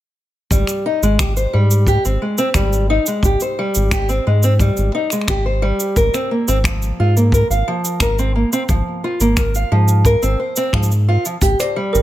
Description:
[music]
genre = folktronica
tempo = 88 BPM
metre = 4/4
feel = straight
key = Ab major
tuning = A4 = 439 Hz
[part]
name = fingerpicked old ladder-braced acoustic guitar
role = arpeggios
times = 0.5-12.0 s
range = F3 to F5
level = -18 LUFS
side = equal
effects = digital delay
[part]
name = round analog bass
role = bass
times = 0.5-12.0 s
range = Ab1 to Ab2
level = -16 LUFS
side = equal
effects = tube saturation
[part]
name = jazz brush drum kit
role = drums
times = 0.5-12.0 s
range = cabasa, finger snaps, hi-hat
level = -24 LUFS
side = right 2 dB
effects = none
[part]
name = kick drum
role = drums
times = 0.5-11.6 s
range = none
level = -21 LUFS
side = equal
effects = none
[part]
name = music box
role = second line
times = 11.6-12.0 s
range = Bb4 to D5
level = -19 LUFS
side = right 2 dB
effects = none
[sound]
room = small room ambience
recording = none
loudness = -14 LUFS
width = side -14 dB against mid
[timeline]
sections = 0.5-12.0 A section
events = none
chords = 0.5 Abmaj7; 6.0 Bbsus2/Ab; 11.4 Abmaj7

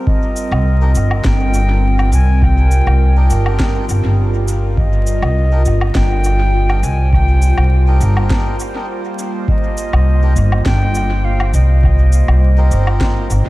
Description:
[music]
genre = ambient dub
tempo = 102 BPM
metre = 4/4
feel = swing 54% on 16ths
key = C minor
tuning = A4 = 439 Hz
[part]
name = warbly tape-like pad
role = sustained chords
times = 0.0-13.5 s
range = G3 to C5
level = -23 LUFS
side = equal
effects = chorus, built-in reverb, phaser
[part]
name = concert flute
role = melody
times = 0.1-13.5 s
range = Eb5 to Ab5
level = -24 LUFS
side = equal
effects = dub echo
[part]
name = electronic kick drum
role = drums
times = 0.1-13.1 s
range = none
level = -17 LUFS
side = equal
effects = none
[part]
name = electronic cabasa, woodblock and snare drum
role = drums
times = 0.4-13.4 s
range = none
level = -26 LUFS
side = equal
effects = dub echo
[part]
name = upright bass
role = bass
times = 0.5-13.5 s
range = G1 to C2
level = -12 LUFS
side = equal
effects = none
[part]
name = melodica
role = stabs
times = 0.8-13.3 s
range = C4 to Bb4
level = -30 LUFS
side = left 1 dB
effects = dub echo
[sound]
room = studio ambience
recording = vinyl crackle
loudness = -12 LUFS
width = side -18 dB against mid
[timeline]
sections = 0.0-13.5 A section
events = none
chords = 0.0 Cm9

